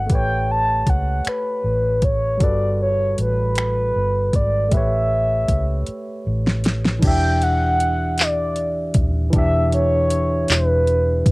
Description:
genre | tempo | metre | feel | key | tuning
slow six-eight R&B | 52 BPM (dotted quarters) | 6/8 | straight | E dorian | A4 = 440 Hz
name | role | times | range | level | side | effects
mellow horn-like synth lead | melody | 0.0-11.3 s | B4 to A5 | -20 LUFS | equal | chorus, plate reverb
barky tine electric piano | accompaniment | 0.0-11.3 s | E3 to E5 | -26 LUFS | equal | overdrive, cassette tape, plate reverb
vintage muted fingered electric bass | bass | 0.0-11.3 s | D#1 to C#2 | -21 LUFS | equal | none
smooth R&B drum kit | drums | 0.1-11.3 s | crash cymbal, finger snaps, handclaps, hi-hat, kick drum, snare drum | -19 LUFS | equal | none
room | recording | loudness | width
light reverb | home recording on cassette | -17 LUFS | side -23 dB against mid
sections
0.0-7.0 A section; 7.0-11.3 B section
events
drum fill 5.9-7.0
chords
0.1 A9; 2.4 Gmaj9; 4.7 A9; 7.0 Em7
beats
| 0.10 1.25 | 2.41 3.56 | 4.71 5.87 | 7.02 8.18 | 9.33 10.48

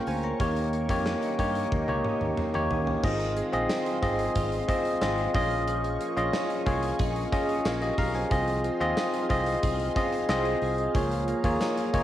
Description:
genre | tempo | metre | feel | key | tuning
1980s-style pop | 91 BPM | 4/4 | straight | Ab major | A4 = 440 Hz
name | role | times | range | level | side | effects
barky tine electric piano | accompaniment | 0.0-12.0 s | Bb3 to Bb5 | -27 LUFS | left 1 dB | cassette tape, plate reverb
phased analog pad | sustained chords | 0.0-12.0 s | Ab4 to Db6 | -37 LUFS | right 4 dB | phaser, chorus, cassette tape, plate reverb
direct-recorded clean electric guitar | riff | 0.0-12.0 s | Eb3 to Ab4 | -37 LUFS | right 7 dB | ensemble chorus, cassette tape, analog delay
fingered electric bass | bass | 0.1-12.0 s | Ab1 to Eb3 | -32 LUFS | equal | none
gated 80s drum kit | drums | 0.1-12.0 s | crash cymbal, hi-hat, kick drum, snare drum, tambourine, toms | -32 LUFS | equal | cassette tape
room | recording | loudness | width
moderate studio reverb, RT60 0.6 s | home recording on cassette | -24 LUFS | side -12 dB against mid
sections
0.0-3.0 A section; 3.0-12.0 B section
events
drum fill 1.7-3.0; tine electric piano fill 7.0-8.3, 11.6-12.0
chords
0.4 Eb7; 3.0 Ab6; 5.3 Eb9sus4/Bb; 8.3 Ab6/C; 10.9 Db6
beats
| 0.40 1.06 1.72 2.38 | 3.04 3.70 4.36 5.01 | 5.67 6.33 6.99 7.65 | 8.31 8.97 9.63 10.29 | 10.95 11.61

